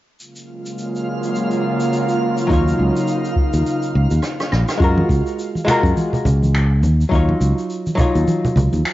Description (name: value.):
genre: sunset chillout.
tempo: 104 BPM.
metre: 4/4.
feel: swing 57% on 16ths.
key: unclear.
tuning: A4 = 439 Hz.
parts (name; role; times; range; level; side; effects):
airy breathy pad; sustained chords; 0.5-4.8 s; Db3 to F4; -21 LUFS; equal; chorus, cassette tape.
shaker, rim click and finger snaps; drums; 0.2-8.9 s; none; -28 LUFS; equal; cassette tape.
twinkling granular texture; texture; 0.9-4.8 s; F4 to F5; -28 LUFS; right 2 dB; built-in reverb, cassette tape, plate reverb.
archtop guitar, miked and amplified; accompaniment; 2.5-8.9 s; Gb3 to Db5; -20 LUFS; left 1 dB; auto-pan, cassette tape, analog delay, plate reverb.
fingered electric bass; bass; 2.5-8.8 s; Bb1 to Gb2; -16 LUFS; equal; none.
electronic kick drum; drums; 2.5-8.1 s; none; -19 LUFS; equal; cassette tape.
congas; percussion; 5.0-8.8 s; none; -22 LUFS; right 1 dB; none.
room: moderate studio reverb, RT60 0.6 s.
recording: home recording on cassette, nothing above 7.6 kHz.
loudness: -15 LUFS.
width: side -15 dB against mid.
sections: 0.2-4.8 A section; 4.8-8.9 B section.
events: drum fill 4.2-4.8.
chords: 0.2 Gbmaj9; 2.2 Ebm9; 4.8 Gbmaj9; 6.8 Ebm9.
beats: | 0.20 0.78 1.35 1.93 | 2.51 3.08 3.66 4.24 | 4.81 5.39 5.97 6.54 | 7.12 7.70 8.28 8.85.